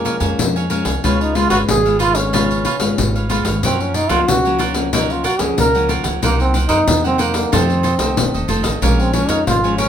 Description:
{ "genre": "samba and choro", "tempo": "92 BPM", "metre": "4/4", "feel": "straight", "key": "Bb minor", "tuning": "A4 = 442 Hz", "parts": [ { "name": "clear trombone", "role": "melody", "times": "0.0-9.9 s", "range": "Bb3 to Bb4", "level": "-18 LUFS", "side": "right 1 dB", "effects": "none" }, { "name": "cavaquinho", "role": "accompaniment", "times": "0.0-9.9 s", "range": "Eb4 to Ab5", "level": "-23 LUFS", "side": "right 6 dB", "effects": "none" }, { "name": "nylon-string guitar", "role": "accompaniment", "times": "0.0-9.9 s", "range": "F2 to F4", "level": "-22 LUFS", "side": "left 4 dB", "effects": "none" }, { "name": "upright bass", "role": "bass", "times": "0.0-9.9 s", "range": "C1 to Gb2", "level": "-21 LUFS", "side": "right 1 dB", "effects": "none" }, { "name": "pandeiro", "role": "percussion", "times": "0.1-9.9 s", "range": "none", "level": "-20 LUFS", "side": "left 3 dB", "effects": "none" } ], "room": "moderate studio reverb, RT60 0.6 s", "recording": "minimal, uncompressed stereo recording", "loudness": "-14 LUFS", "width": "side -9 dB against mid", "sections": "0.0-9.9 A section", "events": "none", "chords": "0.0 Bbm7; 1.0 Db7; 3.6 Gbmaj7; 6.2 Cm7b5; 7.5 F7; 8.8 Bbm7", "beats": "0.39 | 1.04 1.69 2.34 2.99 | 3.64 4.28 4.93 5.58 | 6.23 6.88 7.53 8.18 | 8.83 9.47" }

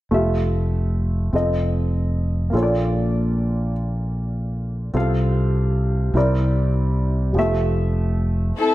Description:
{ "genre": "slow gospel", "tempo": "50 BPM (dotted quarters)", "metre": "6/8", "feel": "straight", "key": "F major", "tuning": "A4 = 435 Hz", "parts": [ { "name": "warm upright piano", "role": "accompaniment", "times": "0.1-8.7 s", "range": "Bb2 to F5", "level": "-23 LUFS", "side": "equal", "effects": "none" }, { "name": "fingered electric bass", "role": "bass", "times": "0.1-8.5 s", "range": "F1 to C2", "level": "-20 LUFS", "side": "equal", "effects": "none" }, { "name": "warm studio string section", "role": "melody", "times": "8.6-8.7 s", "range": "C4 to A4", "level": "-16 LUFS", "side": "left 3 dB", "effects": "none" } ], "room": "light reverb, small room ambience", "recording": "none", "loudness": "-19 LUFS", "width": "side -16 dB against mid", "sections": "0.1-8.7 A section", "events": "none", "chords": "0.1 Fmaj9; 1.3 F7; 2.5 Bbmaj7; 5.0 F/C; 6.2 C9; 7.4 Fmaj9", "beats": "| 0.12 1.33 | 2.54 3.75 | 4.95 6.16 | 7.36 8.57" }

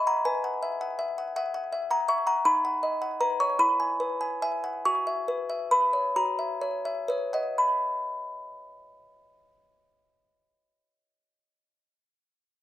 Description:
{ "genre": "classical, lullaby for music box", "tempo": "40-55 BPM (dotted quarters)", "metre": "6/8", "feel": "rubato", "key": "B major", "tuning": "A4 = 445 Hz", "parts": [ { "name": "music box", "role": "solo", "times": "0.0-11.9 s", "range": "D#4 to C#6", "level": "-25 LUFS", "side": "equal", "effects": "slapback echo" } ], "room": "little or no reverb", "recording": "close, detailed microphones", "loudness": "-25 LUFS", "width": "side -13 dB against mid", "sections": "0.0-7.6 A section; 7.6-10.4 B section", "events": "slowing down 1.4-7.6", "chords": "0.3 Eadd9/B; 2.5 B/D#; 3.6 E; 4.9 F#7sus4; 6.2 F#7; 7.6 B5", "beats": "| 0.26 1.36 | 2.46 3.60 | 4.85 6.16 | 7.59 9.01" }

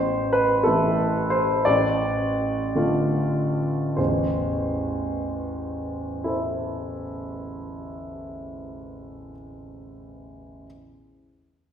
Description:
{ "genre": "classical, romantic character piece for solo piano", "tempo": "45-64 BPM (dotted quarters)", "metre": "6/8", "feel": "rubato", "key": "A minor", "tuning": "A4 = 439 Hz", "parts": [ { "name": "clear upright piano", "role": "solo", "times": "0.0-10.7 s", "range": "A1 to D5", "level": "-23 LUFS", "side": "equal", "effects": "none" } ], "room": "wet recital hall reverb, RT60 1.5 s", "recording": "recorded in a church or concert hall", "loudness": "-22 LUFS", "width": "side -8 dB against mid", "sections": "0.0-4.0 A section; 4.0-8.5 B section", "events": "slowing down 0.0-4.0", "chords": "0.0 Am; 1.7 Dm/A; 4.0 Am", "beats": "0.65 | 1.67 2.76 | 3.98 5.10 | 6.22 7.34" }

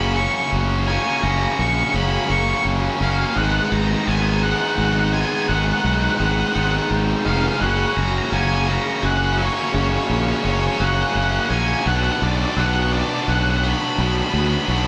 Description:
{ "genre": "post-rock", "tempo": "56 BPM (dotted quarters)", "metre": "6/8", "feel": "straight", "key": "F# major", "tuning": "A4 = 440 Hz", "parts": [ { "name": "octave-fuzz lead guitar", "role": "melody", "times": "0.0-14.9 s", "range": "C#5 to C#6", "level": "-26 LUFS", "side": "equal", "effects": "distortion, digital delay" }, { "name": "tight distorted guitar", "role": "riff", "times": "0.0-14.9 s", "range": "F#2 to D#4", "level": "-24 LUFS", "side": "equal", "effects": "distortion" }, { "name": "fuzz fingered electric bass", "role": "bass", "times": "0.0-14.9 s", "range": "E#1 to D2", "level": "-24 LUFS", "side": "equal", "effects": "overdrive" } ], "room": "moderate studio reverb, RT60 0.8 s", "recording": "band playing live in one room", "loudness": "-20 LUFS", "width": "mono", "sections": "0.0-14.9 A section", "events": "none", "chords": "0.0 F#; 3.4 G#m7; 7.6 F#; 11.9 Bm", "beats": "0.17 | 1.23 2.30 | 3.36 4.42 | 5.49 6.55 | 7.62 8.68 | 9.74 10.80 | 11.87 12.93 | 13.99" }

